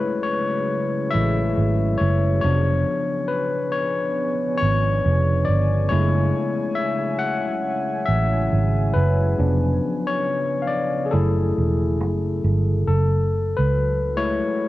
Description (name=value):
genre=hip hop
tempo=69 BPM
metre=4/4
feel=swing 61% on 16ths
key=F# minor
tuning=A4 = 442 Hz
part: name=barky tine electric piano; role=accompaniment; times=0.0-14.7 s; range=E#3 to F#5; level=-22 LUFS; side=left 3 dB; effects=cassette tape, low-pass filter
part: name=deep dark ambient pad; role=sustained chords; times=0.0-14.7 s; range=C#3 to G#5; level=-30 LUFS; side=right 2 dB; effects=chorus, built-in reverb, low-pass filter
part: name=vintage muted fingered electric bass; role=bass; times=1.1-14.4 s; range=E1 to C#2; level=-20 LUFS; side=right 1 dB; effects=none
room=light reverb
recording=home recording on cassette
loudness=-19 LUFS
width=side -16 dB against mid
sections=0.0-12.9 A section; 12.9-14.7 B section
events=tine electric piano solo 0.0-12.9, 12.9-14.7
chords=0.0 F#m9; 2.4 C#7b9/E#; 5.9 F#m9; 9.4 C#7b9/E#; 11.1 F#m9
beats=0.69 1.56 | 2.43 3.30 4.17 5.04 | 5.91 6.78 7.65 8.52 | 9.39 10.26 11.13 12.00 | 12.87 13.73 14.61